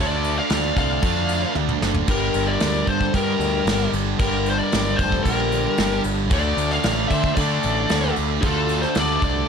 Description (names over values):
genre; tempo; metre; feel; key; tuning
hard rock; 114 BPM; 4/4; straight; D minor; A4 = 441 Hz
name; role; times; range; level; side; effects
bluesy overdriven lead guitar; melody; 0.0-9.5 s; A4 to F5; -25 LUFS; left 4 dB; distortion
nasal lead guitar with a parked wah; second line; 0.0-9.5 s; F4 to D5; -31 LUFS; right 4 dB; overdrive, tape echo
overdriven tonewheel organ; sustained chords; 0.0-9.5 s; G3 to A5; -35 LUFS; equal; none
high-gain distorted guitar; riff; 0.0-9.5 s; G2 to D4; -25 LUFS; right 14 dB; distortion
overdriven semi-hollow guitar; riff; 0.0-9.5 s; G2 to D4; -28 LUFS; left 15 dB; none
growling picked electric bass; bass; 0.0-9.4 s; F1 to D3; -25 LUFS; equal; overdrive
soft brush drum kit; drums; 0.2-9.3 s; crash cymbal, kick drum, snare drum, toms; -25 LUFS; equal; none
room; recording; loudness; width
light reverb; none; -18 LUFS; side -6 dB against mid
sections
0.0-9.5 A section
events
drum fill 1.6-2.1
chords
0.0 Dm; 2.1 Gm; 6.3 Dm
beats
0.51 1.03 1.56 | 2.09 2.62 3.15 3.67 | 4.20 4.73 5.26 5.79 | 6.32 6.84 7.37 7.90 | 8.43 8.96